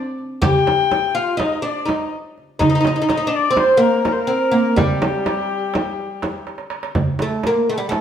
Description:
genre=Turkish makam ensemble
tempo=248 BPM (eighths)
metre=9/8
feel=straight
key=G makam ussak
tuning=A4 = 440 Hz
part: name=darbuka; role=percussion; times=0.2-8.0 s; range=none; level=-25 LUFS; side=right 3 dB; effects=none
part: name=oud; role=melody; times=0.4-8.0 s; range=G3 to G4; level=-18 LUFS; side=right 1 dB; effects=none
part: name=rich kamancheh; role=second line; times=0.4-6.5 s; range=G4 to G5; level=-22 LUFS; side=left 7 dB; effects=none
part: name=frame drum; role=percussion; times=0.4-8.0 s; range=none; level=-23 LUFS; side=right 1 dB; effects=none
room=wet stone room reverb, RT60 0.9 s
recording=band playing live in one room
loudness=-16 LUFS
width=side -9 dB against mid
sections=0.0-6.9 A section; 6.9-8.0 B section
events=drum fill 6.5-6.9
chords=none

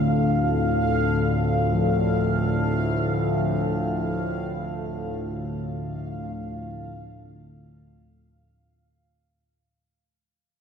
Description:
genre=dark ambient drone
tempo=free time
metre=none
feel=none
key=D minor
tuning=A4 = 440 Hz
part: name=dark analog pad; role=sustained chords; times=0.0-9.3 s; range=D3 to A4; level=-31 LUFS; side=equal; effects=chorus, shimmer reverb
part: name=bronze singing bowl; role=arpeggios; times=0.0-8.4 s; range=A2 to F3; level=-33 LUFS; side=left 4 dB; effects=dub echo
part: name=analog drone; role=drone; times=0.0-9.4 s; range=D2 to A2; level=-25 LUFS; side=left 1 dB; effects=chorus
part: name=bubbling stepped-filter texture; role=texture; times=0.0-9.3 s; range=F5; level=-30 LUFS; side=right 3 dB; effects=chorus, built-in reverb, shimmer reverb
room=wet spring reverb, RT60 3.0 s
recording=echo-heavy mix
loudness=-22 LUFS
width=side -7 dB against mid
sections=0.0-9.3 A section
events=fade-out on singing bowl 0.0-9.3; fade-out 3.4-9.3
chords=0.0 Dm

